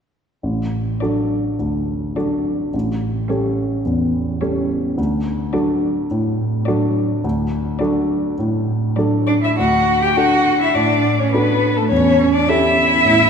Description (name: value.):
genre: quick classical-period movement for piano trio.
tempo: 105 BPM.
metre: 4/4.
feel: rubato.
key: D major.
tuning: A4 = 441 Hz.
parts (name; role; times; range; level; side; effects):
warm grand piano; accompaniment; 0.4-13.3 s; A1 to A4; -18 LUFS; equal; none.
rich violin; melody; 1.0-13.3 s; A4 to G5; -19 LUFS; left 4 dB; none.
rich cello; second line; 1.0-13.3 s; F#3 to G4; -20 LUFS; right 4 dB; none.
room: wet concert hall reverb, RT60 2.1 s.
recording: heard from further back in the room.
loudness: -16 LUFS.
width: side -6 dB against mid.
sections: 0.4-9.6 A section; 9.6-13.3 B section.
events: none.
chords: 0.4 D/A; 2.7 A7; 5.0 D; 11.9 A7/E.